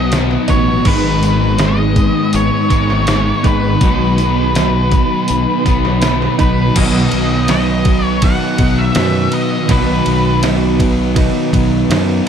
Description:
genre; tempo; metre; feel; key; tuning
rock, shoegaze and dream pop; 82 BPM; 4/4; straight; B major; A4 = 442 Hz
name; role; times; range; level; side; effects
octave-fuzz lead guitar; melody; 0.0-10.4 s; B4 to F#5; -20 LUFS; left 2 dB; distortion, tape echo
ethereal airy pad; sustained chords; 0.0-12.3 s; D#3 to B4; -24 LUFS; right 1 dB; none
crunchy overdriven guitar; riff; 0.0-12.3 s; G#2 to B3; -21 LUFS; right 1 dB; none
direct-recorded clean electric guitar; riff; 0.0-12.3 s; G#2 to D#4; -20 LUFS; right 9 dB; reverse reverb
thick fuzz guitar; riff; 0.0-12.3 s; G#2 to B3; -20 LUFS; left 9 dB; distortion, wide subtle chorus
growling fingered electric bass; bass; 0.0-12.2 s; G#1 to F#2; -17 LUFS; equal; overdrive
detuned 8-bit digital drum machine; drums; 0.1-12.1 s; crash cymbal, hi-hat, kick drum, ride cymbal, snare drum; -17 LUFS; equal; none
room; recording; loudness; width
light reverb, digital ambience; none; -11 LUFS; side -8 dB against mid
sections
0.0-6.8 A section; 6.8-12.3 B section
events
none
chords
0.0 B; 0.9 G#m; 3.8 B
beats
0.12 | 0.86 1.60 2.33 3.07 | 3.81 4.55 5.28 6.02 | 6.76 7.49 8.23 8.96 | 9.70 10.43 11.17 11.90

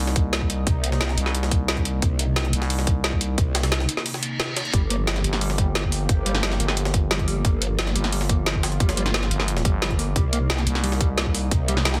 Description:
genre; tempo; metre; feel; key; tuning
dark technical drum and bass; 177 BPM; 4/4; straight; unclear; A4 = 440 Hz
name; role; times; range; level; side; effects
sweeping resonant pad; sustained chords; 0.0-12.0 s; C3 to G4; -34 LUFS; equal; chorus, vintage 12-bit sampler grit, sidechain pumping
growling FM bass; bass; 0.0-11.5 s; G1 to C2; -27 LUFS; equal; none
jungle sampler-style drum kit; drums; 0.1-12.0 s; hi-hat, snare drum; -34 LUFS; equal; high-pass filter on hats, high-pass filter on snare
drum and bass drum kit; drums; 0.2-12.0 s; hi-hat, snare drum; -28 LUFS; equal; none
electronic kick drum; drums; 0.2-11.6 s; none; -24 LUFS; equal; none
growl bass; bass; 0.7-12.0 s; G1 to C2; -26 LUFS; equal; chorus
reverse cymbal; sound effects; 4.2-4.7 s; none; -33 LUFS; equal; none
mellow electric guitar; arpeggios; 4.7-11.9 s; G3 to Bb3; -35 LUFS; equal; sidechain pumping, delay
room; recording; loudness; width
light reverb; dense, heavily limited modern master; -23 LUFS; mono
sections
0.0-12.0 A section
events
break 4.1-4.7; reverse cymbal 4.2-4.7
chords
0.0 Cm7; 4.7 Gm7; 10.2 Cm7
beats
0.33 | 0.67 1.01 1.34 1.68 | 2.02 2.36 2.70 3.04 | 3.38 3.72 4.06 4.40 | 4.74 5.07 5.41 5.75 | 6.09 6.43 6.77 7.11 | 7.45 7.79 8.12 8.46 | 8.80 9.14 9.48 9.82 | 10.16 10.50 10.84 11.18 | 11.52 11.85

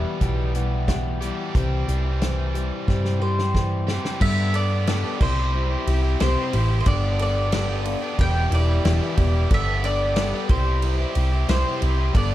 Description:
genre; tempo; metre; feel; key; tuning
folk rock and heartland rock; 91 BPM; 4/4; straight; unclear; A4 = 436 Hz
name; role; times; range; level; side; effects
dark upright piano; second line; 0.0-1.9 s; B4 to E5; -39 LUFS; left 3 dB; none
picked plugged-in steel-string acoustic guitar; accompaniment; 0.0-12.3 s; E2 to A4; -30 LUFS; left 4 dB; none
biting overdriven guitar; riff; 0.0-12.3 s; E2 to G4; -30 LUFS; right 1 dB; none
hollow-body short-scale picked electric bass; bass; 0.0-12.3 s; E1 to G2; -22 LUFS; equal; none
natural country drum kit; drums; 0.2-12.3 s; crash cymbal, hi-hat, kick drum, ride cymbal, snare drum; -25 LUFS; equal; none
mandolin; melody; 3.2-12.3 s; C5 to G5; -28 LUFS; equal; plate reverb, analog delay
bright tonewheel organ; sustained chords; 4.2-12.3 s; G4 to C6; -39 LUFS; equal; none
room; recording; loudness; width
light reverb; dark, warm production; -20 LUFS; side -14 dB against mid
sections
0.0-4.2 A section; 4.2-12.3 B section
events
drum fill 2.9-4.2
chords
0.0 Em; 1.6 C; 4.2 Gadd9; 5.2 C; 6.9 Gadd9; 8.2 Em; 9.5 Gadd9; 10.5 C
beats
0.22 0.88 | 1.55 2.22 2.88 3.55 | 4.21 4.88 5.54 6.20 | 6.86 7.52 8.19 8.85 | 9.51 10.17 10.83 11.49 | 12.15

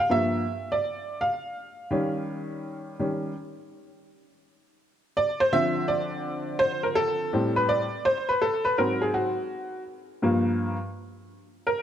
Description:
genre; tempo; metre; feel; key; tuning
hip hop; 83 BPM; 4/4; swing 65% on 16ths; D minor; A4 = 444 Hz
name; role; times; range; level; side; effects
clear upright piano; solo; 0.0-11.8 s; G2 to F5; -24 LUFS; equal; slapback echo
room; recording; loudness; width
light reverb; dark, warm production; -24 LUFS; side -10 dB against mid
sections
0.0-4.4 A section; 4.4-11.8 A section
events
upright piano solo 0.0-4.4, 4.4-11.8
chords
0.0 Gm7; 1.5 Eb7; 4.4 Dm7; 7.3 Am7; 8.8 G#7; 10.2 Gm7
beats
0.10 0.82 | 1.54 2.27 2.99 3.71 | 4.43 5.16 5.88 6.60 | 7.33 8.05 8.77 9.50 | 10.22 10.94 11.66

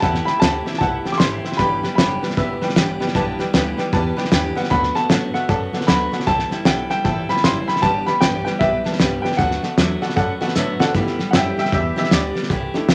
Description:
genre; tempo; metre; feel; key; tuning
rockabilly; 154 BPM; 4/4; swing 62% on 8ths; G major; A4 = 440 Hz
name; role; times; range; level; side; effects
dark upright piano; melody; 0.0-10.5 s; E5 to D6; -24 LUFS; equal; none
honky-tonk upright piano; accompaniment; 0.0-12.9 s; A3 to A5; -28 LUFS; equal; none
picked steel-string acoustic guitar; accompaniment; 0.0-12.9 s; G2 to A4; -27 LUFS; equal; none
upright bass; bass; 0.0-12.9 s; F#1 to A2; -30 LUFS; equal; none
cloth-damped thuddy drum kit; drums; 0.0-12.9 s; hi-hat, kick drum, snare drum; -22 LUFS; equal; none
room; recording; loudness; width
light reverb; none; -19 LUFS; mono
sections
0.0-10.9 A section; 10.9-12.9 B section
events
drum fill 10.6-10.9; honky-tonk piano solo 10.9-12.9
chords
0.0 C6; 1.6 G6; 4.7 D6; 6.3 C6; 7.8 G6; 9.4 D6; 10.9 G6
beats
| 0.03 0.42 0.81 1.20 | 1.59 1.98 2.37 2.76 | 3.15 3.54 3.93 4.32 | 4.71 5.10 5.49 5.88 | 6.27 6.66 7.05 7.44 | 7.83 8.22 8.61 9.00 | 9.39 9.78 10.17 10.56 | 10.95 11.34 11.72 12.11 | 12.50 12.89

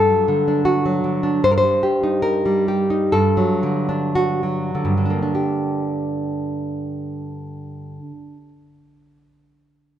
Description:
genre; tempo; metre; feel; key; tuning
romantic piece for solo classical guitar; 48-80 BPM; 2/4; rubato; G minor; A4 = 438 Hz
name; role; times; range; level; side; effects
nylon-string guitar; solo; 0.0-8.5 s; G2 to C5; -18 LUFS; equal; none
room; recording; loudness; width
moderate concert hall reverb, RT60 1.8 s; nothing above 11.0 kHz; -17 LUFS; side -10 dB against mid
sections
0.0-5.4 A section; 5.4-10.0 B section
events
slowing down 0.7-5.4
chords
0.0 D/G; 1.4 Cm/G; 3.1 D/G; 5.4 Gm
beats
0.66 | 1.43 2.24 | 3.13 4.16 | 5.36 6.56 | 7.77

